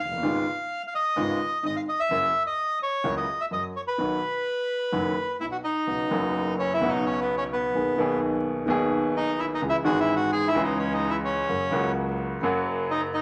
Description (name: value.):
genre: tango.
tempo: 128 BPM.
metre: 4/4.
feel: rubato.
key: B major.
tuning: A4 = 439 Hz.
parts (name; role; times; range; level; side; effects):
bandoneon; melody; 0.0-13.2 s; B3 to E#5; -28 LUFS; equal; none.
clear double bass; bass; 0.0-13.2 s; F#1 to C#2; -41 LUFS; equal; none.
warm baby grand piano; accompaniment; 0.1-13.2 s; E#1 to G#4; -29 LUFS; equal; none.
room: moderate studio reverb, RT60 0.6 s.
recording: vinyl crackle.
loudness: -26 LUFS.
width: mono.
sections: 0.0-5.9 A section; 5.9-13.2 B section.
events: none.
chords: 0.2 C#7/G#; 2.1 F#7; 4.0 B; 5.9 Bsus2; 7.8 G#madd9/B; 9.6 C#m; 11.5 F#.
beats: | 0.23 0.70 1.17 1.64 | 2.11 2.58 3.05 3.52 | 3.99 4.46 4.93 5.40 | 5.88 6.35 6.82 7.29 | 7.75 8.22 8.69 9.15 | 9.62 10.09 10.56 11.02 | 11.49 11.96 12.43 12.90.